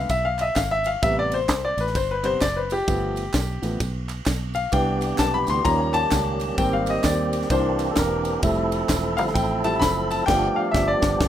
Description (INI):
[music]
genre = uptempo gospel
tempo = 130 BPM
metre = 4/4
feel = swing 61% on 8ths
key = C major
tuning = A4 = 440 Hz
[part]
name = clear upright piano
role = accompaniment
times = 0.0-11.3 s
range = C3 to C6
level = -23 LUFS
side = left 2 dB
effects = none
[part]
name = fingered electric bass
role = bass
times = 0.0-11.3 s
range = E1 to Eb2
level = -28 LUFS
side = right 1 dB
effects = none
[part]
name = crisp fusion drum kit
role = drums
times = 0.1-11.3 s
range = crash cymbal, kick drum, ride cymbal, snare drum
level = -27 LUFS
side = equal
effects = none
[part]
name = tambourine and handclaps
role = percussion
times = 0.1-10.2 s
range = none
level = -37 LUFS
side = right 6 dB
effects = none
[part]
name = tonewheel organ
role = sustained chords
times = 4.7-11.3 s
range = C3 to A4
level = -25 LUFS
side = right 2 dB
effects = fast rotary speaker, overdrive
[sound]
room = light reverb, small room ambience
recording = rough home demo mix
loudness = -20 LUFS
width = side -10 dB against mid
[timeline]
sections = 0.0-11.3 A section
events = upright piano solo 0.0-11.3; band accent 10.3-11.3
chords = 0.0 E(b9); 1.0 Am7; 2.9 G7; 4.7 Cmaj7; 5.7 Eb7; 6.6 Abmaj7; 7.5 C9; 8.4 Fmaj7; 10.3 G7